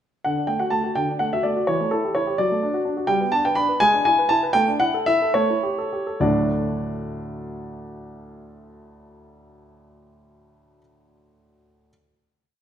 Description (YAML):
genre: classical-period piano sonatina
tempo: 67-86 BPM (dotted quarters)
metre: 6/8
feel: rubato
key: D major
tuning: A4 = 441 Hz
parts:
  - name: warm grand piano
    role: solo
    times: 0.2-11.9 s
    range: D2 to B5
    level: -20 LUFS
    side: equal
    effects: none
room: wet recital hall reverb, RT60 1.7 s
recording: minimal, uncompressed stereo recording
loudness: -19 LUFS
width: side -9 dB against mid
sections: 0.3-6.2 A section; 6.2-9.7 final chord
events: slowing down 2.4-6.2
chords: 0.3 D; 1.7 A5/E; 2.4 D/F#; 3.1 G; 3.8 E7/G#; 4.5 Asus4; 5.3 A7; 6.2 D